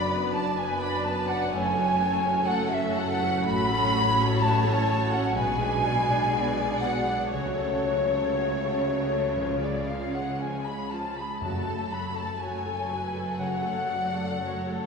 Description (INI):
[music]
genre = classical, slow romantic movement for symphony orchestra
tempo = 56-65 BPM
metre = 4/4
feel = rubato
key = F# minor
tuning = A4 = 441 Hz
[part]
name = warm symphonic violin section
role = melody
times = 0.0-14.9 s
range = F#4 to D5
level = -37 LUFS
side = left 2 dB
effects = none
[part]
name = hollow small flute group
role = second line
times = 0.0-14.7 s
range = C#5 to B5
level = -28 LUFS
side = left 1 dB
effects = none
[part]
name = warm symphonic violin section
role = second line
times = 0.0-14.9 s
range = C#5 to B5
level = -33 LUFS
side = left 2 dB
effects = none
[part]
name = rich symphonic viola section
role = accompaniment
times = 0.0-14.9 s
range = E#3 to D5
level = -34 LUFS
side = right 1 dB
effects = none
[part]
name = mellow French horn section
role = sustained chords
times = 0.0-13.8 s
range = A3 to F#4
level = -36 LUFS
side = left 2 dB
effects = none
[part]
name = warm trombone section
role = sustained chords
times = 0.0-13.8 s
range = F#2 to A3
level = -37 LUFS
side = right 4 dB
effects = none
[part]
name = concert harp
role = arpeggios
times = 0.0-14.9 s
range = F#2 to F#5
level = -37 LUFS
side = left 4 dB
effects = none
[part]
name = rich symphonic cello section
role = bass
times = 0.0-14.9 s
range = F#2 to C#3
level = -34 LUFS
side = right 2 dB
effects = none
[part]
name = rich symphonic double bass section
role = bass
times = 0.0-14.9 s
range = F#1 to C#2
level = -34 LUFS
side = equal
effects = none
[part]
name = timpani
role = percussion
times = 9.4-12.9 s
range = F#2 to C#3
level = -38 LUFS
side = equal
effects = none
[sound]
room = wet concert hall reverb, RT60 2.5 s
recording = recorded in a church or concert hall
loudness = -24 LUFS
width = side -5 dB against mid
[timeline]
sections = 0.0-14.9 A section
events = none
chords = 0.0 Bm/F#; 1.5 F#m; 3.5 F#m/A; 5.4 G#m7b5/B; 7.3 F#m/C#; 9.4 C#; 11.4 F#m